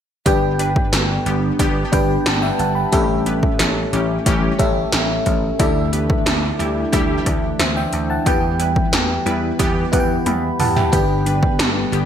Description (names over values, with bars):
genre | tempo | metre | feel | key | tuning
1980s-style pop | 90 BPM | 4/4 | straight | G major | A4 = 442 Hz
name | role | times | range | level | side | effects
FM electric piano | accompaniment | 0.3-12.1 s | G2 to B5 | -21 LUFS | left 1 dB | chorus, phaser
chorused pulse-width pad | sustained chords | 0.3-12.1 s | D3 to D4 | -25 LUFS | equal | none
funky polysynth comp | stabs | 0.3-12.1 s | D3 to B4 | -25 LUFS | left 1 dB | chorus, digital delay
vintage slap bass | bass | 0.3-12.1 s | G1 to E2 | -23 LUFS | equal | none
80s electronic pad drums | drums | 0.3-12.1 s | hi-hat, kick drum, snare drum, toms | -20 LUFS | equal | gated reverb on snare and toms, gated reverb
room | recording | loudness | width
moderate plate reverb, RT60 2.0 s | bright 1980s-style digital production | -16 LUFS | side -9 dB against mid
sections
0.3-12.1 A section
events
drum fill 10.3-10.9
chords
0.3 G; 2.9 A7; 5.6 Dsus2; 8.3 Em; 10.9 G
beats
| 0.26 0.93 1.59 2.26 | 2.93 3.60 4.26 4.93 | 5.59 6.26 6.93 7.59 | 8.26 8.93 9.60 10.26 | 10.93 11.60